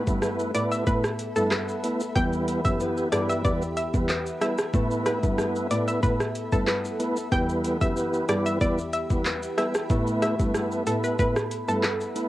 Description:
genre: dancehall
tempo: 93 BPM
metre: 4/4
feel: straight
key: unclear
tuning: A4 = 439 Hz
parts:
  - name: analog pluck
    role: melody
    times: 0.0-12.3 s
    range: A4 to G5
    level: -30 LUFS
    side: equal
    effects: chorus, cassette tape
  - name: tonewheel organ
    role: accompaniment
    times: 0.0-12.3 s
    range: G3 to B4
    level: -28 LUFS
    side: right 1 dB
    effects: chorus vibrato, stopped rotary speaker, cassette tape
  - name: granular cloud pad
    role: sustained chords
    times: 0.0-12.3 s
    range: G4 to B5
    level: -35 LUFS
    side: right 2 dB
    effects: built-in reverb, cassette tape
  - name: nylon-string guitar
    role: arpeggios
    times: 0.0-12.3 s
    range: E3 to B4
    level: -34 LUFS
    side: left 4 dB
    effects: cassette tape
  - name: clear cello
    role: bass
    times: 0.1-11.8 s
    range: E2 to A2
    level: -31 LUFS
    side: equal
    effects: none
  - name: island pop drum kit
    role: drums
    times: 0.1-12.3 s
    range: handclaps, hi-hat, kick drum, rim click, shaker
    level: -27 LUFS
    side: equal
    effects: overdrive, cassette tape
room: light reverb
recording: home recording on cassette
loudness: -23 LUFS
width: side -16 dB against mid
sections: 0.0-12.3 A section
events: none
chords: 0.0 Asus2; 2.2 Em; 4.7 Asus2; 7.3 Em; 9.9 Asus2

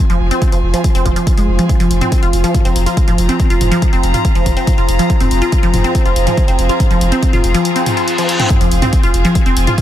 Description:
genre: driving peak-time techno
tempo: 141 BPM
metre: 4/4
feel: straight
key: F minor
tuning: A4 = 438 Hz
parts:
  - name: metallic inharmonic drone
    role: drone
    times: 0.0-9.8 s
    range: F3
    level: -20 LUFS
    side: equal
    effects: chorus, built-in reverb, sidechain pumping
  - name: rich chamber string section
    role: texture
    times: 0.0-9.8 s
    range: C4 to Bb5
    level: -23 LUFS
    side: left 2 dB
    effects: sidechain pumping
  - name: resonant blip pluck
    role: riff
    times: 0.1-9.7 s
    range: F3 to F4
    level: -18 LUFS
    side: equal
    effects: phaser, overdrive, sidechain pumping, ping-pong delay
  - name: saturated sub bass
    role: bass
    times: 0.1-9.7 s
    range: F1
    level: -16 LUFS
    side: equal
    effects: sidechain pumping, low-pass filter
  - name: punchy analog drum machine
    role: drums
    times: 0.1-9.8 s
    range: hi-hat, toms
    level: -23 LUFS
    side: equal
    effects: overdrive, sidechain pumping on hats, sidechain pumping on toms
  - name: electronic kick drum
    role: drums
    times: 0.4-9.8 s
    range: none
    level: -14 LUFS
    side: equal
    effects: overdrive
  - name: reverse cymbal and sub drop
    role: sound effects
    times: 7.8-9.8 s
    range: none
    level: -22 LUFS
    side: left 1 dB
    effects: none
room: little or no reverb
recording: none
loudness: -11 LUFS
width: side -12 dB against mid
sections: 0.0-8.5 A section; 8.5-9.8 B section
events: fade-in on string section 0.0-8.5; reverse cymbal 7.8-8.5; drop 8.5-9.8; impact 8.5-9.8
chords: 0.0 Fm

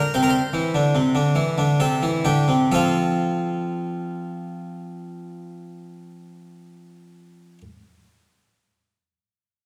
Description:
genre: classical, baroque-style two-part invention for harpsichord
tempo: 62-78 BPM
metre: 3/4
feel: straight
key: F major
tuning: A4 = 437 Hz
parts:
  - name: harpsichord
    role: solo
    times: 0.0-7.6 s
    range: C3 to C5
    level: -23 LUFS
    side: equal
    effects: none
room: wet recital hall reverb, RT60 1.6 s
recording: none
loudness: -21 LUFS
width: mono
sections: 0.0-2.7 A section; 2.7-8.5 B section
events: slowing down 0.0-2.7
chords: 0.1 Cadd9; 1.8 C; 2.7 F

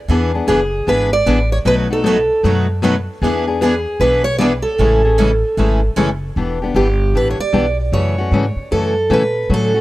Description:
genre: acoustic string swing (jazz manouche)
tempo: 153 BPM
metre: 4/4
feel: swing 63% on 8ths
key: unclear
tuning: A4 = 440 Hz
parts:
  - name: picked steel-string acoustic guitar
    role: accompaniment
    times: 0.1-9.8 s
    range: B2 to G#4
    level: -18 LUFS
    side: left 3 dB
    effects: none
  - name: picked steel-string acoustic guitar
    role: accompaniment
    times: 0.1-6.1 s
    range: B2 to B4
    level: -23 LUFS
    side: right 4 dB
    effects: none
  - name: upright bass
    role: bass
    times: 0.1-9.8 s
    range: E1 to Bb2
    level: -19 LUFS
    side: equal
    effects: none
  - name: picked steel-string acoustic guitar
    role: melody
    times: 0.5-9.8 s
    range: G4 to D5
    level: -17 LUFS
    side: right 2 dB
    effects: tape echo
room: little or no reverb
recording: dry, close 1970s-style studio recording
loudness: -13 LUFS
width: side -16 dB against mid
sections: 0.0-6.4 A section; 6.4-9.8 A section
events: none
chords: 0.0 E7; 1.7 B7; 3.2 E7; 4.8 Amaj7; 6.4 Em7; 7.9 F#m7

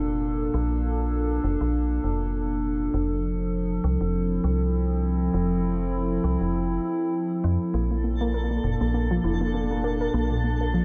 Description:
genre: IDM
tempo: 100 BPM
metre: 4/4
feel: swing 56% on 16ths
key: Bb lydian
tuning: A4 = 443 Hz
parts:
  - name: warbly tape-like pad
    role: sustained chords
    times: 0.0-10.8 s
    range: Bb2 to A4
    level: -29 LUFS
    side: equal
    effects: chorus, built-in reverb
  - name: metallic FM bass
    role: bass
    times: 0.0-10.8 s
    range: F1 to F2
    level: -28 LUFS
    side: equal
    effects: none
  - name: warbly dusty pluck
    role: arpeggios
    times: 7.7-10.8 s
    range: Bb2 to Bb4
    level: -29 LUFS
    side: equal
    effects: chorus, tape echo
  - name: twinkling granular texture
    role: texture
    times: 8.0-10.8 s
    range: A4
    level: -36 LUFS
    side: equal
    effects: built-in reverb
room: light reverb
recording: none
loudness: -25 LUFS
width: mono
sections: 0.0-10.8 A section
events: none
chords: 0.0 Bbmaj7; 2.9 Fmaj7; 7.7 Bbmaj7

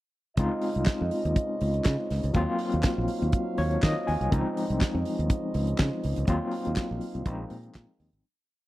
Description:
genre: disco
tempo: 122 BPM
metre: 4/4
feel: straight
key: unclear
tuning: A4 = 439 Hz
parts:
  - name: overdriven tine electric piano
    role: accompaniment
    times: 0.4-8.3 s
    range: Eb3 to Ab5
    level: -30 LUFS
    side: left 2 dB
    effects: fast tremolo
  - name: mellow French horn section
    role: sustained chords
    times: 0.4-8.2 s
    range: Db3 to F5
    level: -35 LUFS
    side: right 3 dB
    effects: none
  - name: fingered electric bass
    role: bass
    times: 0.4-8.2 s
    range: Ab1 to Eb3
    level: -28 LUFS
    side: equal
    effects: none
  - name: damped 70s drum kit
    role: drums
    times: 0.4-8.2 s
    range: handclaps, hi-hat, kick drum, snare drum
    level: -26 LUFS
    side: equal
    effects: none
room: small room ambience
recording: dry, close 1970s-style studio recording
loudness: -25 LUFS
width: side -16 dB against mid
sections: 0.4-8.2 verse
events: tine electric piano fill 3.3-4.3; fade-out 6.3-8.2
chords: 0.4 Dbmaj9; 2.3 Ebm69; 4.3 Dbmaj9; 6.3 Ebm69; 7.3 Bb7sus4

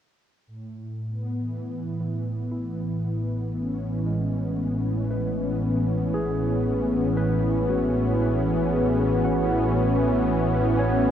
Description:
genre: ambient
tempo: 58 BPM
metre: 4/4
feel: straight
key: A major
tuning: A4 = 440 Hz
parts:
  - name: warm analog pad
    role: sustained chords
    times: 0.5-11.1 s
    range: A2 to C#4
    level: -23 LUFS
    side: equal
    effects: chorus
  - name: round analog bass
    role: bass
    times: 0.5-11.1 s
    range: A1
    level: -36 LUFS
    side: equal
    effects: none
  - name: barky tine electric piano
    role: arpeggios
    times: 2.0-11.1 s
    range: E3 to F#5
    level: -30 LUFS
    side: equal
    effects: ping-pong delay
room: wet huge ambient reverb, RT60 8.0 s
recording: worn, warbling old tape, cassette tape, warbly pitch drift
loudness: -22 LUFS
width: side -9 dB against mid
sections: 0.5-11.1 A section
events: fade-in on tine electric piano 0.5-11.1; fade-in on analog synth bass 0.5-11.1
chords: 0.5 Amaj7

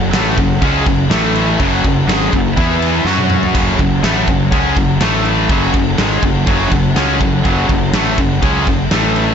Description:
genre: heavy metal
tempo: 123 BPM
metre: 4/4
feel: straight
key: F# minor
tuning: A4 = 440 Hz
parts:
  - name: dark studio string section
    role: sustained chords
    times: 0.0-9.3 s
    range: E3 to F#5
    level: -25 LUFS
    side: right 2 dB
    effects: none
  - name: high-gain distorted guitar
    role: riff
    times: 0.0-9.3 s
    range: F#2 to F#4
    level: -18 LUFS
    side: right 13 dB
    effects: distortion
  - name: tight distorted guitar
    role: riff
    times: 0.0-9.3 s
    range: F#2 to F#4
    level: -18 LUFS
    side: left 13 dB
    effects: distortion
  - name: fuzz fingered electric bass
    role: bass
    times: 0.0-9.3 s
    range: F#1 to F#2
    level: -18 LUFS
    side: right 1 dB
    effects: overdrive
  - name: big rock drum kit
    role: drums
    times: 0.1-9.3 s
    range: crash cymbal, kick drum, snare drum, splash cymbal, toms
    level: -17 LUFS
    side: equal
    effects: none
room: light reverb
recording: blown-out, overdriven recording, overdrive, nothing above 7.8 kHz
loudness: -12 LUFS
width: side -7 dB against mid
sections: 0.0-9.3 A section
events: drum fill 3.1-3.5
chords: 0.0 F#m; 1.1 A5; 1.6 F#m; 2.6 E5; 3.1 F#m; 5.0 A5; 5.5 F#m

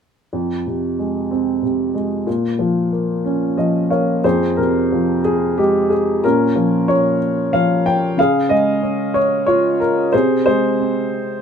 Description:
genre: classical, lyrical solo piano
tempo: 92 BPM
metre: 3/4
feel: rubato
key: F minor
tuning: A4 = 440 Hz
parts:
  - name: warm upright piano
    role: solo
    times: 0.3-11.4 s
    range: F2 to G5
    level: -15 LUFS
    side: equal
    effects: none
room: moderate studio reverb, RT60 0.6 s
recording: minimal, uncompressed stereo recording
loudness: -15 LUFS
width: side -7 dB against mid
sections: 0.3-4.2 A section; 4.2-11.4 B section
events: upright piano fill 3.2-4.2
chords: 0.3 Fm; 2.3 Bbm; 4.2 Fm; 6.2 Bbm; 8.2 Db; 10.1 Ab/C

